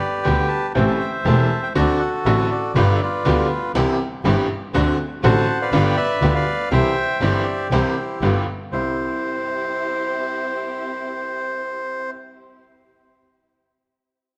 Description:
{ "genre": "tango", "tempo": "121 BPM", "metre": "4/4", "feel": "rubato", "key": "C major", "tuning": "A4 = 439 Hz", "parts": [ { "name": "bandoneon", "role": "melody", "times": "0.0-12.1 s", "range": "E4 to A5", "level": "-25 LUFS", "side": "equal", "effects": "none" }, { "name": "bright upright piano", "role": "accompaniment", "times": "0.2-12.1 s", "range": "E1 to G4", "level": "-25 LUFS", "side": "equal", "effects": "none" }, { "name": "dark symphonic string section", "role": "stabs", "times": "0.3-12.1 s", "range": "A3 to G4", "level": "-31 LUFS", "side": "equal", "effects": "tape echo" }, { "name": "clear double bass", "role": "bass", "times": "0.3-8.9 s", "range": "E1 to D2", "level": "-24 LUFS", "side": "equal", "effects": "none" } ], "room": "moderate concert hall reverb, RT60 2.2 s", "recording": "none", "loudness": "-20 LUFS", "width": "mono", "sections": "0.0-8.7 A section; 8.7-12.7 B section", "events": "none", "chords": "0.0 G; 0.8 Am7; 1.8 D7; 2.8 G7; 3.7 C; 4.7 D7; 5.7 G7; 6.7 C; 8.2 G7; 8.7 C" }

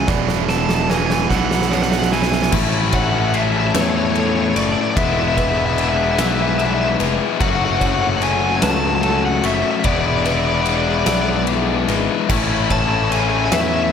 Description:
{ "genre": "post-rock", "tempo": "49 BPM (dotted quarters)", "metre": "6/8", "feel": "straight", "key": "A major", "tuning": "A4 = 439 Hz", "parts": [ { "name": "overdriven electric guitar", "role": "melody", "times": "0.0-13.9 s", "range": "C#5 to A5", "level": "-22 LUFS", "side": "right 1 dB", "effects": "slapback echo" }, { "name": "rich studio string section", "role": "sustained chords", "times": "0.0-13.9 s", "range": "E3 to C#6", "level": "-32 LUFS", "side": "equal", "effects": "none" }, { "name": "felt-muted upright piano", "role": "arpeggios", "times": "0.0-13.9 s", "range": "A4 to C#6", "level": "-31 LUFS", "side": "right 4 dB", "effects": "slapback echo" }, { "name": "twelve-string electric guitar", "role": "arpeggios", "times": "0.0-13.9 s", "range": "E2 to F#4", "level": "-28 LUFS", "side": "left 1 dB", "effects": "slapback echo" }, { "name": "tight distorted guitar", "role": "riff", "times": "0.0-2.5 s", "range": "E2 to E3", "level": "-22 LUFS", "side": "right 14 dB", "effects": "distortion" }, { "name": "fuzz picked electric bass", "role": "bass", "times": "0.0-13.9 s", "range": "E1 to E2", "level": "-22 LUFS", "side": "equal", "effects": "overdrive" }, { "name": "oversized low-tuned drum kit", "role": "drums", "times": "0.1-13.7 s", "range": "crash cymbal, kick drum, ride cymbal, snare drum", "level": "-21 LUFS", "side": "right 1 dB", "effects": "none" }, { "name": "tight distorted guitar", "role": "riff", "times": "2.5-13.9 s", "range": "A2 to F#4", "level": "-20 LUFS", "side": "left 12 dB", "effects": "distortion" } ], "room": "light reverb, small room reverb", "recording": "none", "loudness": "-15 LUFS", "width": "side -7 dB against mid", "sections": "0.0-2.5 A section; 2.5-13.9 B section", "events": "build-up 0.0-2.5; drum fill 0.0-2.5", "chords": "0.1 E7; 2.5 Amaj7; 5.0 E7; 7.4 F#m7; 9.8 E7; 12.3 A" }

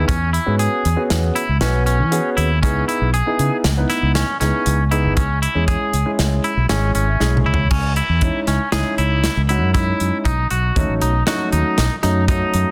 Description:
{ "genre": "progressive instrumental, band music in an uneven meter", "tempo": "118 BPM", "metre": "5/4", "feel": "straight", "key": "C# minor", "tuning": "A4 = 440 Hz", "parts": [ { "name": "dark baby grand piano", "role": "accompaniment", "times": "0.0-12.7 s", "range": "F#3 to G#5", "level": "-26 LUFS", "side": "equal", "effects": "none" }, { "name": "twangy electric guitar", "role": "arpeggios", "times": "0.0-12.7 s", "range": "C#4 to G#4", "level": "-24 LUFS", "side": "equal", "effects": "none" }, { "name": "fingered electric bass", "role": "bass", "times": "0.0-12.6 s", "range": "G#1 to E3", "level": "-21 LUFS", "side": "equal", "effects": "none" }, { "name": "natural country drum kit", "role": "drums", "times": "0.1-12.7 s", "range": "crash cymbal, hi-hat, kick drum, snare drum, toms", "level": "-24 LUFS", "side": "equal", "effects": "none" } ], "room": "light reverb, small room ambience", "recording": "dense, heavily limited modern master", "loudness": "-18 LUFS", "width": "mono", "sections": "0.0-7.7 A section; 7.7-12.7 B section", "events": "grand piano fill 6.7-7.7; drum fill 7.2-7.7", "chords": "0.1 E6; 2.6 C#m7; 5.2 C#m; 7.7 C#madd9; 10.3 B7" }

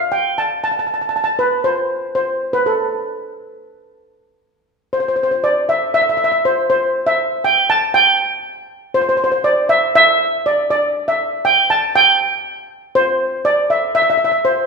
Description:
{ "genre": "calypso", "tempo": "120 BPM", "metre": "4/4", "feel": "straight", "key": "A minor", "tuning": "A4 = 442 Hz", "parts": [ { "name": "steel pan", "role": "solo", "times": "0.0-14.7 s", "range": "A4 to A5", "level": "-14 LUFS", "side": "equal", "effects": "none" } ], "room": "wet recital hall reverb, RT60 1.7 s", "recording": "minimal, uncompressed stereo recording", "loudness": "-14 LUFS", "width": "side -4 dB against mid", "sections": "0.0-5.7 A section; 5.7-14.7 B section", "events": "none", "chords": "none" }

